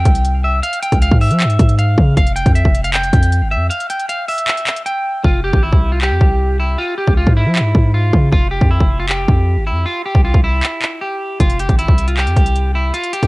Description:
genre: hip hop, trap.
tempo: 156 BPM.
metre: 4/4.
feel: half-time.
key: F harmonic minor.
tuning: A4 = 440 Hz.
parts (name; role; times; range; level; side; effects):
electric guitar at the edge of break-up; melody; 0.0-13.3 s; E4 to G5; -19 LUFS; equal; cassette tape.
hard-hitting 808-style bass; bass; 0.0-13.3 s; F1 to F3; -15 LUFS; equal; none.
trap drum kit; drums; 0.1-13.3 s; handclaps, hi-hat, kick drum; -15 LUFS; equal; cassette tape.
room: digital ambience.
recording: home recording on cassette.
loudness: -12 LUFS.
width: side -22 dB against mid.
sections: 0.0-5.2 A section; 5.2-13.3 B section.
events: break 3.7-5.2, 10.6-11.4; hi-hats muted 5.2-11.4.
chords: 0.0 Fsus2 (rootless); 0.6 Db; 2.2 Fsus2; 3.7 N.C.; 5.2 Fsus2; 6.8 Db; 8.3 Fsus2; 9.9 C; 11.4 Fsus2.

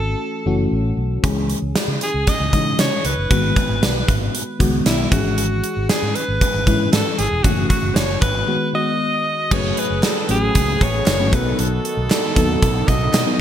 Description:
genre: 1980s-style pop.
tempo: 116 BPM.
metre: 4/4.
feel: straight.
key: C# minor.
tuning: A4 = 440 Hz.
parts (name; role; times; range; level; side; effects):
bright alto saxophone; melody; 0.0-13.4 s; E4 to D#5; -22 LUFS; equal; ping-pong delay.
mellow FM electric piano; accompaniment; 0.0-13.4 s; D#3 to A4; -23 LUFS; left 2 dB; chorus.
fretless electric bass; bass; 0.0-13.2 s; E1 to C#3; -22 LUFS; equal; none.
gated 80s drum kit; drums; 1.2-13.3 s; crash cymbal, hi-hat, kick drum, snare drum; -19 LUFS; right 1 dB; gated reverb.
mellow brass ensemble; sustained chords; 9.5-13.4 s; C#3 to G#4; -30 LUFS; right 2 dB; none.
analog synth brass; stabs; 9.5-13.4 s; D#4 to B4; -30 LUFS; right 4 dB; chorus.
group handclap; percussion; 10.0-13.3 s; none; -36 LUFS; right 1 dB; none.
room: moderate lush hall reverb, RT60 2.0 s, studio reverb.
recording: bright 1980s-style digital production.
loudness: -16 LUFS.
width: side -10 dB against mid.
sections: 0.0-9.5 A section; 9.5-13.4 B section.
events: none.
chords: 0.0 F#m7; 1.2 C#m; 3.3 G#m7; 5.1 C#m/G#; 7.4 F#m7; 8.5 G#m7; 9.5 F#madd9; 11.3 B7.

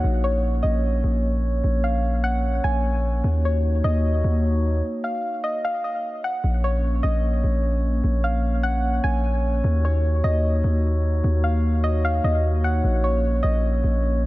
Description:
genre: hip hop, atmospheric cloud-rap.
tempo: 150 BPM.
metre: 4/4.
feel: half-time.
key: unclear.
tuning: A4 = 440 Hz.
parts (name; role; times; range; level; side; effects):
soft round pluck; melody; 0.0-14.0 s; Db5 to Ab5; -28 LUFS; equal; chorus, low-pass filter, digital delay.
glass harmonica; sustained chords; 0.0-14.3 s; Bb3 to Db5; -27 LUFS; equal; none.
long sustained 808-style bass; bass; 0.0-14.3 s; Bb1 to Eb2; -21 LUFS; equal; none.
room: light reverb, small room reverb.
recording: none.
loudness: -20 LUFS.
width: side -18 dB against mid.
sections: 0.0-6.4 A section; 6.4-14.3 B section.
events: stop 4.8-6.4.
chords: 0.0 Bbm; 3.2 Ebm7; 6.4 Bbm; 9.6 Ebm7; 12.8 Bbm.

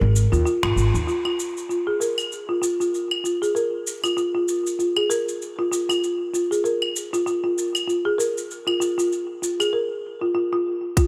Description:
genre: organic downtempo.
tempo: 97 BPM.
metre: 4/4.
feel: swing 57% on 16ths.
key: F minor pentatonic.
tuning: A4 = 441 Hz.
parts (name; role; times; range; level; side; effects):
folk marimba with soft mallets; arpeggios; 0.0-11.1 s; F4 to Bb4; -25 LUFS; equal; low-pass filter, tape echo.
upright bass; bass; 0.0-1.0 s; Ab1 to Eb2; -21 LUFS; equal; sidechain pumping.
organic electronic drum kit; drums; 0.2-11.1 s; claves, finger snaps, hi-hat, shaker; -30 LUFS; equal; none.
electronic kick drum; drums; 11.0-11.1 s; none; -18 LUFS; equal; none.
room: moderate huge ambient reverb, RT60 4.1 s.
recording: none.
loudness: -23 LUFS.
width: mono.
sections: 0.0-1.1 A section; 1.1-11.0 B section.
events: break 0.0-1.1; band accent 0.6-0.9.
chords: 0.0 Ab5; 1.1 Fsus4.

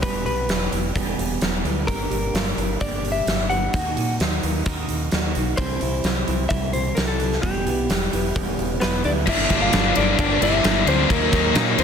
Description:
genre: quiet-loud alternative rock.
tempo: 130 BPM.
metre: 4/4.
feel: straight.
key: G dorian.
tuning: A4 = 440 Hz.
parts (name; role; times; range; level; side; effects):
direct-recorded clean electric guitar; melody; 0.0-11.8 s; Bb3 to F#5; -25 LUFS; left 3 dB; none.
picked steel-string acoustic guitar; arpeggios; 0.0-9.3 s; E2 to G4; -29 LUFS; right 9 dB; tape echo.
growling fingered electric bass; bass; 0.0-11.8 s; E1 to Bb2; -26 LUFS; equal; overdrive.
big rock drum kit; drums; 0.0-11.8 s; crash cymbal, hi-hat, kick drum, ride cymbal, snare drum; -23 LUFS; equal; none.
cranked stack guitar; riff; 9.3-11.8 s; G2 to Eb4; -22 LUFS; left 16 dB; overdrive.
fuzz guitar; riff; 9.3-11.8 s; G2 to Eb4; -25 LUFS; right 15 dB; distortion.
room: little or no reverb.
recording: dense, heavily limited modern master.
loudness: -19 LUFS.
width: side -7 dB against mid.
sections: 0.0-9.3 A section; 9.3-11.8 B section.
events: none.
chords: 0.0 Em; 1.9 Gm; 3.7 Ebm; 5.6 C; 7.4 Em; 9.3 Gm; 11.1 Ebm.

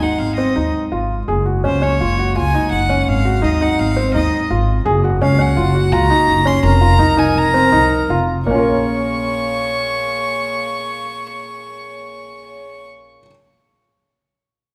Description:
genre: contemporary instrumental, chamber music in an uneven meter.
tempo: 166 BPM.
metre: 5/4.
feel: straight.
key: Bb minor.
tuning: A4 = 440 Hz.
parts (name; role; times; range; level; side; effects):
clear violin; melody; 0.0-12.9 s; C5 to Db6; -22 LUFS; equal; none.
mellow woodwind section; sustained chords; 0.0-12.9 s; F3 to Db5; -28 LUFS; equal; none.
felt-muted upright piano; arpeggios; 0.0-13.3 s; Bb3 to Bb4; -21 LUFS; equal; none.
upright bass; bass; 0.0-13.2 s; F1 to Eb2; -20 LUFS; equal; none.
room: wet concert hall reverb, RT60 2.0 s.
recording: recorded in a church or concert hall.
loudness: -16 LUFS.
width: mono.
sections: 0.0-8.5 A section; 8.5-12.1 B section.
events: slowing down 5.6-8.5.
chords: 0.0 Ab7; 1.3 Gbadd9; 3.1 Ab7; 4.9 Gbadd9; 6.6 F7sus4; 8.5 Bbm7.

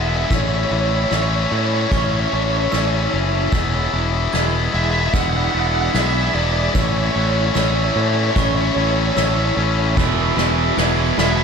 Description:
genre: post-rock.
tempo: 74 BPM.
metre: 4/4.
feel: straight.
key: A major.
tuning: A4 = 440 Hz.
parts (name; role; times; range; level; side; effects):
bluesy overdriven lead guitar; melody; 0.0-11.4 s; C#5 to F#5; -24 LUFS; right 1 dB; distortion, diffuse ambient delay.
shimmering ambient pad; sustained chords; 0.0-11.4 s; E4 to B5; -32 LUFS; right 3 dB; none.
electric guitar through a small old amp; arpeggios; 0.0-11.4 s; E2 to D4; -28 LUFS; equal; lush chorus, diffuse ambient delay.
glockenspiel with brass mallets; arpeggios; 0.0-11.4 s; C#6 to G#6; -28 LUFS; right 7 dB; diffuse ambient delay.
tight distorted guitar; riff; 0.0-11.4 s; A2 to E4; -22 LUFS; left 7 dB; distortion.
growling fingered electric bass; bass; 0.0-11.4 s; E1 to A2; -21 LUFS; equal; overdrive.
soft-mallet drum kit; drums; 0.3-11.4 s; crash cymbal, kick drum, snare drum; -22 LUFS; equal; none.
distorted electric guitar; riff; 10.0-11.4 s; E2 to E3; -22 LUFS; right 10 dB; overdrive.
room: moderate lush hall reverb, RT60 2.8 s.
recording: dreamy mix soaked in reverb.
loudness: -16 LUFS.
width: side -6 dB against mid.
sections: 0.0-11.4 A section.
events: build-up 0.0-11.4; drum fill 0.0-11.4.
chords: 0.3 Amaj7; 3.5 E7; 6.8 A; 10.0 E7.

